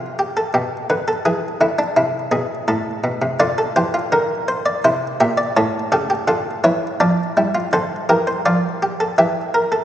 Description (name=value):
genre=classical, baroque-style 3-part fugue for harpsichord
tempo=83 BPM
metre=3/4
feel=straight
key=unclear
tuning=A4 = 440 Hz
part: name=buff-stop harpsichord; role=solo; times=0.0-9.8 s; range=A2 to E5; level=-16 LUFS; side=equal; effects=none
room=wet church reverb, RT60 3.4 s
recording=recorded in a church or concert hall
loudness=-16 LUFS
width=side -11 dB against mid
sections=0.0-7.7 A section; 7.7-9.8 B section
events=none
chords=0.0 Am/C; 0.5 G/B; 1.3 E; 2.7 Am; 3.4 Dm; 4.8 C; 5.6 A; 7.0 Dm/F; 7.7 Gm/D; 9.2 Edim